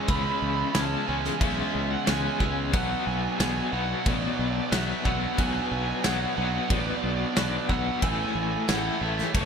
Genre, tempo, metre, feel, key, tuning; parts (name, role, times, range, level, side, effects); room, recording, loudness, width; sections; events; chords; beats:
post-rock; 91 BPM; 4/4; straight; A4 = 440 Hz
smooth overdriven lead guitar; melody; 0.0-9.5 s; C#5 to B5; -32 LUFS; right 3 dB; slapback echo
dark chamber string section; sustained chords; 0.0-9.5 s; G#3 to F#5; -42 LUFS; right 1 dB
glockenspiel with brass mallets; arpeggios; 0.0-9.3 s; E6 to G#6; -39 LUFS; right 4 dB; slapback echo
twelve-string electric guitar; arpeggios; 0.0-8.0 s; B2 to D4; -38 LUFS; left 1 dB
crunchy overdriven guitar; riff; 0.0-9.5 s; A2 to C#4; -32 LUFS; left 13 dB; tremolo
overdriven electric guitar; riff; 0.0-9.5 s; A2 to C#4; -32 LUFS; right 14 dB
growling fingered electric bass; bass; 0.1-9.5 s; F#1 to C#2; -31 LUFS; equal; overdrive
loose indie drum kit; drums; 0.1-9.5 s; crash cymbal, kick drum, snare drum; -29 LUFS; equal
light reverb, small room ambience; -24 LUFS; side -6 dB against mid
0.0-9.5 A section
0.0 C#m7; 2.7 Bm; 8.0 Amaj7
| 0.09 0.75 1.41 2.07 | 2.74 3.40 4.06 4.72 | 5.38 6.05 6.71 7.37 | 8.03 8.69 9.35